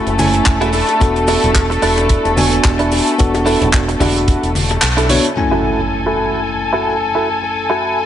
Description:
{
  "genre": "nu-disco, nu disco",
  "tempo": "110 BPM",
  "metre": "4/4",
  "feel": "swing 56% on 16ths",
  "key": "F# minor",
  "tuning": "A4 = 441 Hz",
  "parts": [
    { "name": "bell-like tine electric piano", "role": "accompaniment", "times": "0.0-8.1 s", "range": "F#2 to G#5", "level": "-19 LUFS", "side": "moving between left 3 dB and right 4 dB", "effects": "auto-pan, slapback echo" },
    { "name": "muted studio string section", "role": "sustained chords", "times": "0.0-8.1 s", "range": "A3 to G#5", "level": "-19 LUFS", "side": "left 3 dB", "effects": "sidechain pumping" },
    { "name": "direct-recorded clean electric guitar", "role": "riff", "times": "0.0-8.0 s", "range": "D4 to A4", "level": "-20 LUFS", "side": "right 2 dB", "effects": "wide subtle chorus, low-pass filter" },
    { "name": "fingered electric bass with an envelope filter", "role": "bass", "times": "0.1-5.2 s", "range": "E1 to B1", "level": "-19 LUFS", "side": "equal", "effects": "none" },
    { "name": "damped 70s drum kit", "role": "drums", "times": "0.1-8.1 s", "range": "handclaps, hi-hat, shaker", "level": "-20 LUFS", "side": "right 2 dB", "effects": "low-pass filter on hats, low-pass filter on snare, low-pass filter on perc, low-pass filter on room" },
    { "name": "cabasa, bongos and congas", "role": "percussion", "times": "0.1-5.3 s", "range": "none", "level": "-24 LUFS", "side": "left 3 dB", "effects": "none" },
    { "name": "kick drum", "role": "drums", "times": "0.5-4.4 s", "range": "none", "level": "-14 LUFS", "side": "equal", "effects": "none" },
    { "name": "impact", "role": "sound effects", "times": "5.4-7.6 s", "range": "none", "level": "-25 LUFS", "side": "equal", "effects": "none" }
  ],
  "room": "moderate lush hall reverb, RT60 2.1 s",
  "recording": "nothing above 10.8 kHz",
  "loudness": "-12 LUFS",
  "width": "side -10 dB against mid",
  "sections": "0.0-5.4 A section; 5.4-8.1 B section",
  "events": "kick drops out 4.8-5.4; band accent 4.8; impact 5.4-7.6",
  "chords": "0.0 F#m7; 0.7 E7sus4; 5.4 F#m7"
}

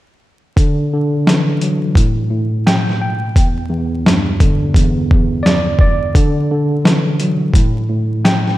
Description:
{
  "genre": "hip hop, boom-bap hip-hop",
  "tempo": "86 BPM",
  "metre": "4/4",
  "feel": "swing 62% on 16ths",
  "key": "unclear",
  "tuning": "A4 = 440 Hz",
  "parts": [
    { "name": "mellow tine electric piano", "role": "accompaniment", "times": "0.6-8.6 s", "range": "E2 to G5", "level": "-16 LUFS", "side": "equal", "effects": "medium stereo tremolo, high-pass filter, low-pass filter" },
    { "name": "dusty soul sampler-style drum kit", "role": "drums", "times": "0.6-8.5 s", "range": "hi-hat, kick drum, snare drum", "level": "-13 LUFS", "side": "equal", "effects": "overdrive" }
  ],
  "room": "moderate lush hall reverb, RT60 1.8 s, digital ambience",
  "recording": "dreamy mix soaked in reverb, vinyl crackle",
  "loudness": "-12 LUFS",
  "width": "side -16 dB against mid",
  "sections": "0.6-8.6 A section",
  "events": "none",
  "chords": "0.6 Dadd9; 2.0 Gsus2/A; 3.4 Em7; 6.2 Dadd9; 7.5 Gsus2/A"
}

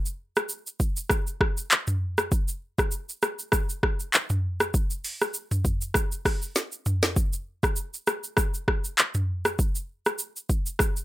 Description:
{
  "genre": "afrobeats",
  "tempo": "99 BPM",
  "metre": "4/4",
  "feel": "swing 55% on 16ths",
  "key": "none",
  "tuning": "none",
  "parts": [
    { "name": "afro-pop drum kit", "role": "drums", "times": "0.1-11.0 s", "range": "handclaps, hi-hat, kick drum, rim click, shaker, snare drum, toms", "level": "-23 LUFS", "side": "equal", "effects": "overdrive" }
  ],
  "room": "light reverb",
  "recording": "none",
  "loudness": "-24 LUFS",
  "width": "side -16 dB against mid",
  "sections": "0.0-11.0 A section",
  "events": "drum fill 6.6-7.2",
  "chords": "none"
}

